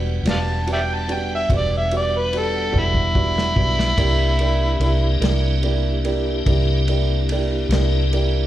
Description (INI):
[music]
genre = slow blues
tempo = 48 BPM (dotted quarters)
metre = 12/8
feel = straight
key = E minor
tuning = A4 = 442 Hz
[part]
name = dark grand piano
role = accompaniment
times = 0.0-8.4 s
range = E4 to D5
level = -26 LUFS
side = right 5 dB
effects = slapback echo
[part]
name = tonewheel organ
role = sustained chords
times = 0.0-8.5 s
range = G3 to F#5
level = -27 LUFS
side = left 2 dB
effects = slow rotary speaker, chorus vibrato
[part]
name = vintage muted fingered electric bass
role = bass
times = 0.0-8.5 s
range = E1 to C2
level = -20 LUFS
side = equal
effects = none
[part]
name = overdriven harmonica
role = melody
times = 0.3-5.2 s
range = E4 to A5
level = -22 LUFS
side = equal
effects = slapback echo
[part]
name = warm soul drum kit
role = drums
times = 0.3-8.3 s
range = kick drum, ride cymbal, snare drum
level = -27 LUFS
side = equal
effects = none
[sound]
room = little or no reverb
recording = live gig heard through the venue's PA, club reverb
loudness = -17 LUFS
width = side -13 dB against mid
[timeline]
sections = 0.0-8.5 A section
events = harmonica solo 0.0-8.5; drum fill 2.7-4.0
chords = 0.0 Em7; 4.0 C7